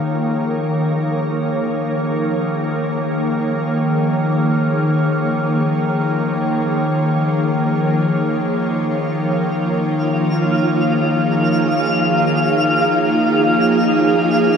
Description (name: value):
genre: ambient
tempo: free time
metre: none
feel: none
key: unclear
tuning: A4 = 436 Hz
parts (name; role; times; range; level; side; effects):
- ethereal airy pad; sustained chords; 0.0-14.6 s; F3 to Db5; -19 LUFS; equal; ensemble chorus, built-in reverb
- organ-like drone; drone; 0.0-14.6 s; Eb3 to Bb3; -19 LUFS; left 1 dB; ensemble chorus, built-in reverb
- twinkling granular texture; texture; 9.3-14.6 s; F4 to F5; -19 LUFS; equal; built-in reverb
room: wet plate reverb, RT60 2.8 s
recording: none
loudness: -15 LUFS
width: side -7 dB against mid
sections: 0.0-14.6 A section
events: fade-in on ambient pad 0.0-14.6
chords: 0.0 Eb9sus4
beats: free time